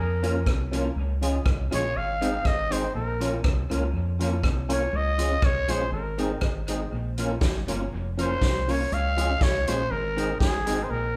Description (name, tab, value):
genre	ska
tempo	121 BPM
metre	4/4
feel	swing 53% on 8ths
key	Bb minor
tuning	A4 = 438 Hz
part	growling trumpet	melody	0.0-11.2 s	Ab4 to F5	-30 LUFS	equal	none
part	fingered electric bass	bass	0.0-11.2 s	F1 to F2	-31 LUFS	equal	none
part	vintage hollow-body jazz guitar	accompaniment	0.2-10.8 s	Eb3 to Db4	-35 LUFS	equal	dub echo
part	tonewheel organ	stabs	0.2-10.8 s	C4 to Bb4	-35 LUFS	equal	overdrive, chorus vibrato, slow rotary speaker
part	swinging big-band drum kit	drums	0.2-10.8 s	hi-hat, kick drum, rim click, snare drum	-29 LUFS	equal	none
room	wet large studio reverb, RT60 0.8 s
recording	band playing live in one room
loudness	-26 LUFS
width	mono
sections	0.0-11.2 A section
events	trumpet solo 0.0-11.2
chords	0.0 Bbm; 1.0 Db; 2.0 Ab; 2.9 Bbm; 4.9 Db; 5.9 Ab; 6.9 Bbm; 8.9 Db; 9.9 Ab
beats	0.46 | 0.96 1.46 1.95 2.45 | 2.95 3.44 3.94 4.44 | 4.94 5.43 5.93 6.43 | 6.93 7.42 7.92 8.42 | 8.91 9.41 9.91 10.41 | 10.90